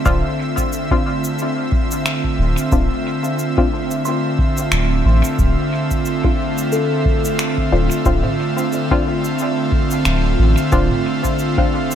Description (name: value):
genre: ambient dub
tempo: 90 BPM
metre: 4/4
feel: swing 57% on 16ths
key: D minor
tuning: A4 = 440 Hz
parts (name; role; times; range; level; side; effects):
- airy breathy pad; sustained chords; 0.0-11.9 s; D3 to E5; -19 LUFS; right 1 dB; chorus
- buzzing kalimba; arpeggios; 0.0-9.2 s; A4 to C6; -28 LUFS; left 4 dB; tape echo
- filtered dub chord stab; stabs; 0.1-11.7 s; C4 to F4; -24 LUFS; left 3 dB; chorus, dub echo
- soft dub sub bass; bass; 0.1-10.9 s; D1 to A1; -16 LUFS; equal; none
- electronic kick drum; drums; 0.1-11.7 s; none; -19 LUFS; equal; none
- organic electronic drum kit; drums; 0.1-11.9 s; cabasa, finger snaps, toms; -25 LUFS; equal; dub echo
room: light reverb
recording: none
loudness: -15 LUFS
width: side -9 dB against mid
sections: 0.0-11.9 A section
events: none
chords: 0.0 Dm7